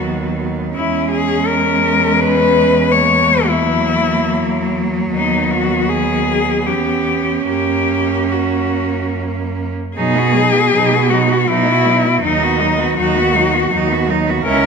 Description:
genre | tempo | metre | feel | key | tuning
classical, lyrical piece for cello ensemble | 71-84 BPM | 3/4 | rubato | B major | A4 = 439 Hz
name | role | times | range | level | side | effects
rich cello | melody | 0.0-14.7 s | D#4 to C#5 | -16 LUFS | left 5 dB | none
rich cello | second line | 0.0-14.7 s | A#3 to F#4 | -20 LUFS | right 9 dB | none
rich cello | accompaniment | 0.0-14.7 s | F#3 to C#4 | -22 LUFS | left 3 dB | none
dark cello | bass | 0.0-14.7 s | C#2 to B2 | -20 LUFS | right 3 dB | none
room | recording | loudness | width
moderate concert hall reverb, RT60 1.7 s | minimal, uncompressed stereo recording | -13 LUFS | side -5 dB against mid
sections
0.0-10.0 A section; 10.0-14.7 B section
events
none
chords
0.0 B/D#; 0.8 C#m7/E; 2.9 F#7/E; 5.1 B/D#; 6.7 C#m7b5/E; 7.5 F#; 10.0 B; 12.2 B/D#

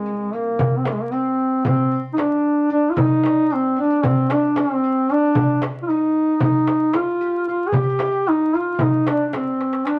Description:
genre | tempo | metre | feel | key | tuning
Turkish makam ensemble | 227 BPM (eighths) | 9/8 | straight | C makam nihavent | A4 = 440 Hz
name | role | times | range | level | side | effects
mellow duduk | melody | 0.0-10.0 s | Ab3 to Ab4 | -20 LUFS | equal | none
oud | second line | 0.0-10.0 s | Ab3 to G4 | -33 LUFS | equal | none
dark cello | drone | 0.0-0.6 s | C2 | -42 LUFS | equal | none
darbuka | percussion | 0.6-10.0 s | none | -25 LUFS | equal | none
frame drum | percussion | 0.6-9.5 s | none | -29 LUFS | equal | none
room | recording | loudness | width
moderate studio reverb, RT60 0.8 s | vinyl crackle, nothing above 11.0 kHz | -19 LUFS | mono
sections
0.6-10.0 A section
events
drum fill 9.6-10.0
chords
none

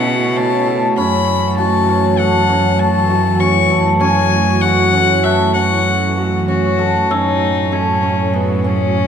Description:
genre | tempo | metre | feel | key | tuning
contemporary instrumental, chamber music in an uneven meter | 98 BPM | 5/4 | straight | F# minor | A4 = 440 Hz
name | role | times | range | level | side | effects
rich violin | melody | 0.0-9.1 s | B3 to C#6 | -18 LUFS | left 8 dB | none
soft additive organ-like pad | sustained chords | 0.0-9.1 s | A2 to F#4 | -21 LUFS | right 1 dB | ensemble chorus, built-in reverb
cimbalom | arpeggios | 0.0-9.1 s | C#4 to A4 | -17 LUFS | equal | none
bright cello | bass | 0.0-9.1 s | F#2 to B2 | -18 LUFS | right 3 dB | none
worn celesta | texture | 0.0-0.5, 5.3-8.5 s | C#6 to F#6 | -29 LUFS | left 6 dB | none
room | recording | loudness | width
moderate concert hall reverb, RT60 2.3 s | none | -12 LUFS | side -8 dB against mid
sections
0.0-7.1 A section; 7.1-9.1 B section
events
none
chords
0.0 B9sus4; 1.0 F#m7; 7.1 F#madd9

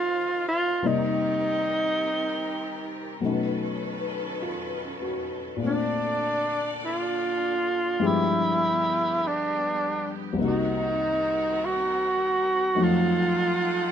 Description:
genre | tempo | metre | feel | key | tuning
jazz ballad | 50 BPM | 4/4 | swing 66% on 8ths | unclear | A4 = 443 Hz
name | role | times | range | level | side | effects
breathy tenor saxophone | melody | 0.0-13.9 s | D4 to Gb4 | -24 LUFS | right 1 dB | none
dark baby grand piano | accompaniment | 0.0-13.9 s | C2 to F5 | -28 LUFS | left 3 dB | none
clear studio string section | sustained chords | 0.0-13.9 s | D3 to Gb5 | -34 LUFS | equal | none
room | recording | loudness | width
moderate studio reverb, RT60 0.9 s | minimal, uncompressed stereo recording | -23 LUFS | side -9 dB against mid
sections
0.0-13.9 A section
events
none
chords
0.0 Dbmaj9; 0.8 Cm7; 3.2 B9; 5.6 Bbmaj7; 8.0 G7b9; 10.4 Cm7b5; 12.7 F7b9

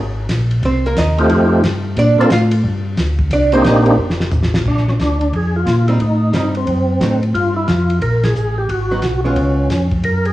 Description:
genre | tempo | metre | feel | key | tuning
soul jazz organ trio | 179 BPM | 4/4 | swing 64% on 8ths | Bb major | A4 = 440 Hz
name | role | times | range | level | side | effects
mellow tonewheel organ | bass | 0.0-10.3 s | F1 to Bb2 | -16 LUFS | equal | slow rotary speaker
warm soul drum kit | drums | 0.3-10.3 s | crash cymbal, hi-hat, kick drum, ride cymbal, snare drum, toms | -22 LUFS | equal | cassette tape
archtop guitar, miked and amplified | accompaniment | 0.7-3.8, 5.9-9.7 s | D3 to F5 | -18 LUFS | right 2 dB | cassette tape
percussive tonewheel organ | melody | 1.2-10.3 s | A3 to Bb4 | -17 LUFS | equal | slow rotary speaker, overdrive, chorus vibrato, cassette tape
room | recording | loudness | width
light reverb, studio ambience | home recording on cassette, studio reverb | -13 LUFS | side -15 dB against mid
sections
0.0-4.7 A section; 4.7-10.3 B section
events
hollow-body jazz guitar solo 0.0-4.7; drum fill 4.0-4.7; band accent 8.2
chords
0.0 Gbadd9 (rootless); 0.6 Cm7; 1.3 F9; 2.0 Bbmaj9; 2.6 G5; 3.3 Cm7; 4.0 F; 4.7 Bb; 6.0 Am7b5; 6.7 D7b9; 7.3 Gm9; 8.7 Abm7; 9.4 Db7

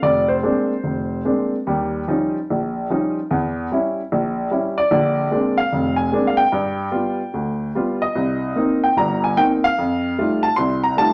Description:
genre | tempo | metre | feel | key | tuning
solo jazz | 148 BPM | 4/4 | swing 66% on 8ths, rubato | Bb mixolydian | A4 = 439 Hz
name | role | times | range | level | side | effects
warm upright piano | solo | 0.0-11.1 s | F1 to C6 | -20 LUFS | equal | none
room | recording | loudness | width
wet studio reverb, RT60 0.8 s | none | -20 LUFS | mono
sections
0.0-11.1 A section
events
none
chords
0.0 Bb9; 1.7 Eb9; 3.3 Edim7; 4.9 Bb9; 6.5 G7; 8.2 Cm7; 9.8 F9

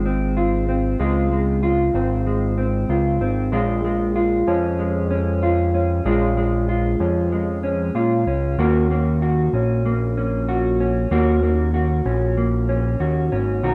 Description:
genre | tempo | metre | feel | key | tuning
dream pop | 95 BPM | 4/4 | straight | unclear | A4 = 436 Hz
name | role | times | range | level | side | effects
mellow electric guitar | arpeggios | 0.0-13.7 s | Eb3 to Gb4 | -22 LUFS | equal | analog chorus, delay
fat analog bass | bass | 0.0-13.7 s | Ab1 to Bb2 | -24 LUFS | equal | none
room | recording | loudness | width
moderate studio reverb, RT60 0.5 s | rough home demo mix | -20 LUFS | mono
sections
0.0-13.7 A section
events
none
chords
0.0 Dbmaj7; 3.5 Bbm7; 8.6 Ebm7

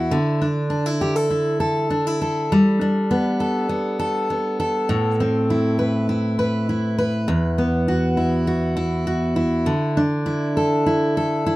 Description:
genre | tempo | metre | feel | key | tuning
pop | 100 BPM | 4/4 | straight | unclear | A4 = 441 Hz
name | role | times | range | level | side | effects
picked steel-string acoustic guitar | solo | 0.0-11.6 s | E2 to B4 | -18 LUFS | equal | none
room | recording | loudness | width
light reverb | rough home demo mix | -18 LUFS | side -18 dB against mid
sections
0.0-11.6 A section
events
none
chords
0.1 Dsus2; 2.5 Gadd9; 4.9 Amadd9; 7.3 Esus2; 9.7 Dsus2

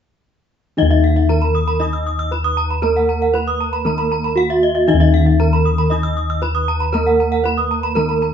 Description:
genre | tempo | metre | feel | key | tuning
Balinese gamelan | 117 BPM | 4/4 | straight | Eb pelog | A4 = 440 Hz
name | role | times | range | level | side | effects
gamelan-type bronze metallophone | melody | 0.8-8.3 s | Eb4 to Eb5 | -19 LUFS | right 1 dB | none
gamelan-type bronze metallophone | accompaniment | 0.8-8.3 s | Eb3 to Eb4 | -24 LUFS | right 1 dB | none
gamelan-type bronze metallophone | arpeggios | 0.8-8.3 s | Eb5 to Eb6 | -25 LUFS | left 3 dB | none
gamelan-type bossed gongs | bass | 0.8-8.3 s | Eb2 to Bb4-30c | -18 LUFS | left 1 dB | none
gamelan-type bronze metallophone | arpeggios | 0.9-8.2 s | Fb5+20c to Fb6+20c | -23 LUFS | right 3 dB | none
room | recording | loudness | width
moderate small room reverb, RT60 0.6 s | band playing live in one room, nothing above 7.8 kHz | -14 LUFS | side -8 dB against mid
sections
0.8-8.3 A section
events
none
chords
none

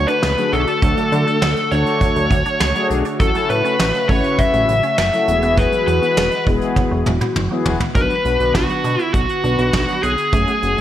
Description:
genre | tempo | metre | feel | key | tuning
synth-pop | 101 BPM | 4/4 | straight | unclear | A4 = 441 Hz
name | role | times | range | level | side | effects
bluesy overdriven lead guitar | melody | 0.0-10.8 s | F#4 to E5 | -18 LUFS | left 1 dB | distortion
phased analog pad | sustained chords | 0.0-10.8 s | C#3 to G#4 | -25 LUFS | right 2 dB | phaser, chorus
resonant blip pluck | arpeggios | 0.0-10.6 s | F#3 to F#6 | -29 LUFS | right 5 dB | chorus, analog delay
fat analog bass | bass | 0.0-10.8 s | E1 to D3 | -21 LUFS | equal | none
soft brush drum kit | drums | 0.1-10.8 s | hi-hat, kick drum, snare drum, toms | -20 LUFS | equal | gated reverb
mellow synth brass | accompaniment | 0.4-10.8 s | A3 to B4 | -23 LUFS | left 4 dB | chorus
room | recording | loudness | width
light reverb, small room ambience | none | -14 LUFS | side -11 dB against mid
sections
0.0-8.0 A section; 8.0-10.8 B section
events
drum fill 6.8-8.0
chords
0.0 D; 3.2 A6; 5.3 Eadd9; 8.0 Bm

